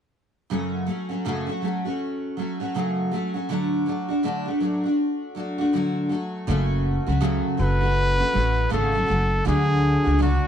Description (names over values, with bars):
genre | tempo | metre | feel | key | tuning
acoustic pop | 80 BPM | 4/4 | swing 60% on 16ths | F# minor | A4 = 439 Hz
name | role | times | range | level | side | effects
picked steel-string acoustic guitar | accompaniment | 0.5-10.5 s | F#2 to F#4 | -24 LUFS | equal | double-tracked left and right
upright bass | bass | 6.5-10.4 s | F#1 to D2 | -22 LUFS | equal | none
bright trumpet | melody | 7.6-10.5 s | F#4 to B4 | -23 LUFS | equal | none
room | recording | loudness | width
little or no reverb | dry, close 1970s-style studio recording | -21 LUFS | side -9 dB against mid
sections
0.5-6.5 A section; 6.5-10.5 B section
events
none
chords
0.5 F#m; 3.5 D; 6.1 F#m; 9.5 D